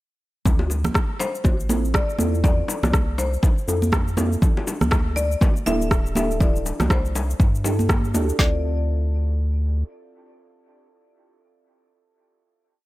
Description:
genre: afro house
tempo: 121 BPM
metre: 4/4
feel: swing 58% on 16ths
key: D minor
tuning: A4 = 442 Hz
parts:
  - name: deep mellow chord stab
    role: stabs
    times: 0.5-12.2 s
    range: C4 to A4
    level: -30 LUFS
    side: right 2 dB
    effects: chorus, phaser, sidechain pumping, dub echo
  - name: warm sub bass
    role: bass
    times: 0.5-9.8 s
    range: D1 to G2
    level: -23 LUFS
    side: equal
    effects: sidechain pumping
  - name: deep house drum kit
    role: drums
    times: 0.5-8.5 s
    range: kick drum, snare drum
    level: -20 LUFS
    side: equal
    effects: none
  - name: electronic shaker and rim click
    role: drums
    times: 0.5-8.4 s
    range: none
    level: -28 LUFS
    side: equal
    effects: none
  - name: bongos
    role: percussion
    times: 0.5-8.3 s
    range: none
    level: -30 LUFS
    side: left 3 dB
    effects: none
  - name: congas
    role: percussion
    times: 0.5-8.3 s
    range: none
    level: -27 LUFS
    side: right 2 dB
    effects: none
  - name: marimba with medium mallets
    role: melody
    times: 1.2-12.2 s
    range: C5 to E5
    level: -30 LUFS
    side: left 2 dB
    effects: dub echo
room: small room ambience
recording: none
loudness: -19 LUFS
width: side -17 dB against mid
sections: 0.5-8.4 groove; 8.4-12.4 final chord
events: filter sweep on synth stab 0.5-8.4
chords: 0.5 Dm7; 4.4 C6/D; 8.4 Dm7

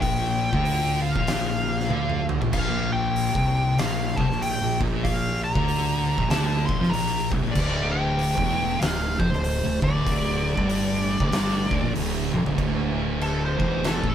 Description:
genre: stoner and doom metal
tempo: 96 BPM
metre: 4/4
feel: swing 62% on 8ths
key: D minor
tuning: A4 = 438 Hz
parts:
  - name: fuzz lead guitar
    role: melody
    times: 0.0-14.1 s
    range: A4 to C6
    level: -28 LUFS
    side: left 1 dB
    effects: wah, distortion
  - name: string machine, full ensemble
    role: sustained chords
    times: 0.0-14.1 s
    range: D3 to C5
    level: -36 LUFS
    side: right 1 dB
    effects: none
  - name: thick fuzz guitar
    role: riff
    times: 0.0-14.1 s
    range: D2 to F3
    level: -28 LUFS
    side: left 5 dB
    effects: distortion
  - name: thick fuzz guitar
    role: riff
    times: 0.0-14.1 s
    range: D2 to F3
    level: -29 LUFS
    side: right 5 dB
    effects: distortion
  - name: fuzz fingered electric bass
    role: bass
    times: 0.0-14.1 s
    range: D1 to F2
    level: -29 LUFS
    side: equal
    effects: overdrive
  - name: oversized low-tuned drum kit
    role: drums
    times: 0.0-14.1 s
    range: crash cymbal, hi-hat, kick drum, snare drum, toms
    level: -28 LUFS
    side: equal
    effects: none
room: moderate studio reverb, RT60 0.7 s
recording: band playing live in one room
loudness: -21 LUFS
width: side -9 dB against mid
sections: 0.0-12.6 A section; 12.6-14.1 B section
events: drum fill 1.9-2.5, 12.3-12.6; lead electric guitar solo 12.6-14.1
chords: 0.0 Bb5; 7.6 Dm; 12.6 D5

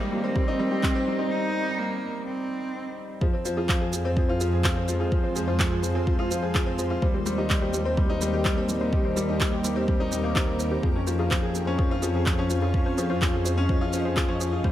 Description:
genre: piano and strings electronica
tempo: 126 BPM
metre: 4/4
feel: straight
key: unclear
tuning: A4 = 440 Hz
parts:
  - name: rich cello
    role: melody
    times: 0.0-3.2 s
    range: Bb3 to Eb4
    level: -29 LUFS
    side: right 1 dB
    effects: tape echo
  - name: granular cloud pad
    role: sustained chords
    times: 0.1-14.7 s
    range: G3 to Eb5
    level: -35 LUFS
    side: equal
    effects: built-in reverb
  - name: warbly dusty pluck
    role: arpeggios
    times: 0.0-14.7 s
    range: G4 to C5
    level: -37 LUFS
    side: left 2 dB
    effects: none
  - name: bright grand piano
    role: riff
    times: 0.0-14.7 s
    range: F3 to Ab4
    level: -27 LUFS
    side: left 1 dB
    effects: tape echo
  - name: muted symphonic double bass section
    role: bass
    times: 0.0-14.7 s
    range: Ab1 to F2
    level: -29 LUFS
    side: equal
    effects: sidechain pumping, high-pass filter
  - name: electronic kick drum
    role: drums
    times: 0.4-14.7 s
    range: none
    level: -26 LUFS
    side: equal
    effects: none
  - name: electronic handclaps and shaker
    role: drums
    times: 0.8-14.5 s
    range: none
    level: -30 LUFS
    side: right 1 dB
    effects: none
room: moderate lush hall reverb, RT60 1.6 s, digital ambience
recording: faint mains hum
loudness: -23 LUFS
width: side -12 dB against mid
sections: 0.0-3.2 A section; 3.2-14.7 B section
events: build-up 0.0-3.2; break 1.3-3.2; drop 3.2-14.7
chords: 0.0 Eb6; 3.2 Fm; 7.0 Eb6; 10.8 Db/F

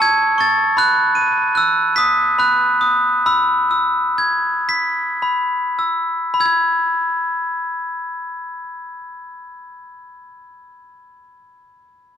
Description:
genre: children's music, lullaby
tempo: 32-51 BPM (dotted quarters)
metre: 6/8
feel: rubato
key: E major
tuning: A4 = 442 Hz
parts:
  - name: glockenspiel with soft plastic mallets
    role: solo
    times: 0.0-10.3 s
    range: A5 to D#7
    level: -16 LUFS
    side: equal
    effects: none
room: little or no reverb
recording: dry, close 1970s-style studio recording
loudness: -15 LUFS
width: side -8 dB against mid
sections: 0.0-6.4 A section; 6.4-10.1 B section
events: slowing down 0.8-6.4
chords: 0.0 A; 0.8 B; 3.3 E

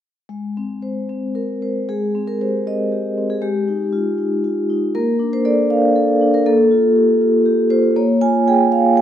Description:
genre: classical, contemporary piece for solo vibraphone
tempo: 118 BPM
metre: 3/4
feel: rubato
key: Ab major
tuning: A4 = 439 Hz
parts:
  - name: vibraphone with medium mallets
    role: solo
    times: 0.3-9.0 s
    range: Ab3 to Ab5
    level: -15 LUFS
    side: equal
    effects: none
room: moderate recital hall reverb, RT60 1.6 s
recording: dark, warm production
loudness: -15 LUFS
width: side -10 dB against mid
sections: 0.3-1.9 A section; 1.9-9.0 B section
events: none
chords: 0.3 Abadd9; 1.9 Abmaj7; 3.4 Fm9/Ab; 5.0 Bbmaj7; 6.5 Gm9/Bb; 8.0 Bb5

